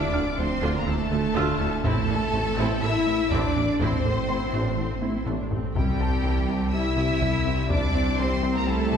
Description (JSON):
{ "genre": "cinematic, hybrid orchestral and electronic film score", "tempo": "123 BPM", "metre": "4/4", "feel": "straight", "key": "unclear", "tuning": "A4 = 438 Hz", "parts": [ { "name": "warm symphonic violin section", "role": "melody", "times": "0.0-9.0 s", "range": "G5 to E6", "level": "-34 LUFS", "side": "left 2 dB", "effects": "none" }, { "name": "rich symphonic violin section", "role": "second line", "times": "0.0-9.0 s", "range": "G4 to E5", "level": "-33 LUFS", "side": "left 2 dB", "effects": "none" }, { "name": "rich symphonic viola section", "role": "accompaniment", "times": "0.0-9.0 s", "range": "G3 to G4", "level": "-33 LUFS", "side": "right 1 dB", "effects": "none" }, { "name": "mellow French horn section", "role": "sustained chords", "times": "0.0-9.0 s", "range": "G3 to E4", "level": "-31 LUFS", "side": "left 3 dB", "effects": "none" }, { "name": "analog pluck", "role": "arpeggios", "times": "0.0-9.0 s", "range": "C3 to A4", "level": "-34 LUFS", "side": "left 1 dB", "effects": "chorus, phaser" }, { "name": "rubbery square bass", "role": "riff", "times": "0.0-9.0 s", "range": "C2 to A3", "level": "-30 LUFS", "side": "left 1 dB", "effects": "none" }, { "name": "rich symphonic cello section", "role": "bass", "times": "0.0-9.0 s", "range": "G3 to E4", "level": "-31 LUFS", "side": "right 3 dB", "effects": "none" }, { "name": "saturated sub bass", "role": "bass", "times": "0.0-9.0 s", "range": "D1 to C2", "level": "-32 LUFS", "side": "equal", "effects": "none" }, { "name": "clear grand piano", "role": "texture", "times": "0.0-9.0 s", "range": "A5 to F6", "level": "-39 LUFS", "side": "left 1 dB", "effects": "ping-pong delay" }, { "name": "clear tuba", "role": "bass", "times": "0.1-9.0 s", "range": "A1 to D2", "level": "-32 LUFS", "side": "right 1 dB", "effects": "none" }, { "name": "rich chamber double bass section", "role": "bass", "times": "0.1-9.0 s", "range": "A1 to D2", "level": "-32 LUFS", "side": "right 2 dB", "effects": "none" }, { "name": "taiko ensemble", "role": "drums", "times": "1.4-8.2 s", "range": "none", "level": "-32 LUFS", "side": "equal", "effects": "none" } ], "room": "wet scoring stage reverb, RT60 2.0 s", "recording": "heard from further back in the room", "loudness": "-22 LUFS", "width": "side -7 dB against mid", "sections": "0.0-9.0 A section", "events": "drum fill 5.0-5.8", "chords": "0.0 Dm; 1.8 Am; 5.8 C" }